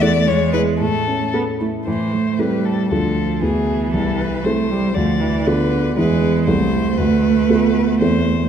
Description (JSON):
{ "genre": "quick classical-period movement for piano trio", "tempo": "117 BPM", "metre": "2/4", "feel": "straight", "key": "A minor", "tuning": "A4 = 439 Hz", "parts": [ { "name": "rich violin", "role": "melody", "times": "0.0-8.5 s", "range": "G#4 to D5", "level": "-24 LUFS", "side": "left 6 dB", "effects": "none" }, { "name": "rich cello", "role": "second line", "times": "0.0-8.5 s", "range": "D3 to B3", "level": "-20 LUFS", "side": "right 6 dB", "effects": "none" }, { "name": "dark concert grand piano", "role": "accompaniment", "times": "0.0-8.5 s", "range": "C2 to A4", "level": "-18 LUFS", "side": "equal", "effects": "none" } ], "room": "wet concert hall reverb, RT60 2.1 s", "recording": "none", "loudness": "-15 LUFS", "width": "side -8 dB against mid", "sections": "0.0-1.9 A section; 1.9-8.5 B section", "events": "none", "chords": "0.3 E; 0.8 A; 1.9 Am; 2.9 Dm; 3.4 E7/D; 3.9 Am/C; 5.0 Bm7b5/D; 6.0 E; 6.5 Am/C; 7.0 Bm7b5/D" }